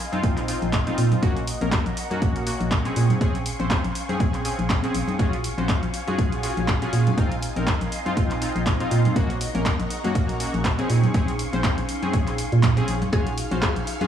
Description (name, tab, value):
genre	deep house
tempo	121 BPM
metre	4/4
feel	swing 56% on 16ths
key	Bb minor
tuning	A4 = 440 Hz
part	soft string machine	sustained chords	0.0-14.1 s	Eb5 to Db6	-34 LUFS	equal	phaser, ensemble chorus, sidechain pumping
part	warm analog keys	stabs	0.1-14.1 s	Bb3 to C5	-28 LUFS	left 1 dB	chorus, tape echo
part	deep house drum kit	drums	0.1-14.1 s	handclaps, hi-hat	-31 LUFS	equal	overdrive
part	congas	percussion	0.1-14.1 s	none	-32 LUFS	left 4 dB	sidechain pumping on perc
part	warbly tape-like pad	texture	0.8-14.1 s	Db4 to C5	-38 LUFS	left 2 dB	none
part	organ-like FM bass	bass	0.2-13.8 s	Bb1 to Bb2	-24 LUFS	right 2 dB	sidechain pumping
part	electronic kick drum	drums	0.2-13.7 s	none	-25 LUFS	equal	overdrive
part	mallet-like synth pluck	melody	13.1-14.0 s	Ab4	-32 LUFS	left 2 dB	chorus, analog delay
part	dark symphonic violin section	texture	13.1-14.1 s	F5 to F6	-37 LUFS	left 1 dB	sidechain pumping
room	light reverb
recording	dry, gritty hardware recording, transformer saturation, studio ambience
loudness	-20 LUFS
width	side -9 dB against mid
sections	0.0-14.1 A section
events	none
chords	0.0 Bb9sus4; 1.2 Ab9sus4/Bb (rootless); 3.0 Bbm9; 5.2 Gbmaj9#11/Bb; 7.2 Bb9sus4; 9.2 Ab9sus4/Bb; 10.9 Bbm9; 13.1 Ebm11/Bb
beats	0.23 0.73 | 1.23 1.72 2.22 2.71 | 3.21 3.71 4.20 4.70 | 5.19 5.69 6.19 6.68 | 7.18 7.67 8.17 8.66 | 9.16 9.66 10.15 10.65 | 11.14 11.64 12.14 12.63 | 13.13 13.62